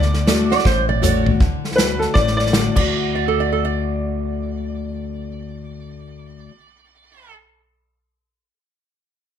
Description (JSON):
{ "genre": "honky-tonk and classic country", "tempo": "160 BPM", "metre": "4/4", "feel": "swing 63% on 8ths", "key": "D major", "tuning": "A4 = 440 Hz", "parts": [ { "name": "clear upright piano", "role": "melody", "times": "0.0-6.5 s", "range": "A4 to D5", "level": "-23 LUFS", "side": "left 2 dB", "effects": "none" }, { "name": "picked steel-string acoustic guitar", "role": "accompaniment", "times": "0.0-6.5 s", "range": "A2 to F#4", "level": "-23 LUFS", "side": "left 5 dB", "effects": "none" }, { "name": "upright bass", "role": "bass", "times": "0.0-6.5 s", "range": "A1 to D2", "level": "-24 LUFS", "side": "equal", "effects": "none" }, { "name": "unplugged drum kit", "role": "drums", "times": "0.0-2.8 s", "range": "crash cymbal, hi-hat, kick drum, snare drum, toms", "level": "-19 LUFS", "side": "equal", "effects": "none" }, { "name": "tack piano", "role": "accompaniment", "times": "0.3-1.3 s", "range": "F#4 to D5", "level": "-26 LUFS", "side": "right 6 dB", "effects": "none" }, { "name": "lap resonator guitar", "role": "second line", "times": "0.5-7.3 s", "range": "A4 to D5", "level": "-23 LUFS", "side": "right 9 dB", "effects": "none" } ], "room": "moderate studio reverb, RT60 0.7 s", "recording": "none", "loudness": "-16 LUFS", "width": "side -9 dB against mid", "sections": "0.0-1.4 A section; 1.4-2.9 B section; 2.9-5.9 C section", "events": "drum fill 0.7-1.4", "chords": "0.0 D" }